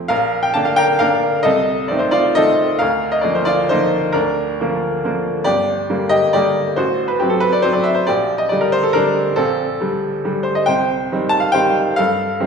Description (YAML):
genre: classical, piano waltz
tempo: 137 BPM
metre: 3/4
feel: uneven beats, rubato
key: Bb major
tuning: A4 = 440 Hz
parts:
  - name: bright baby grand piano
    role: solo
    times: 0.0-12.5 s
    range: G1 to A5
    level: -14 LUFS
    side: equal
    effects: none
room: wet recital hall reverb, RT60 1.4 s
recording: recorded in a church or concert hall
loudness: -14 LUFS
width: side -6 dB against mid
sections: 0.1-12.5 A section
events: none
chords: 0.1 Bb; 1.5 Adim/C; 2.8 Bb/D; 5.5 Gm; 6.8 F#dim/A; 8.1 Gm/Bb; 10.7 Cm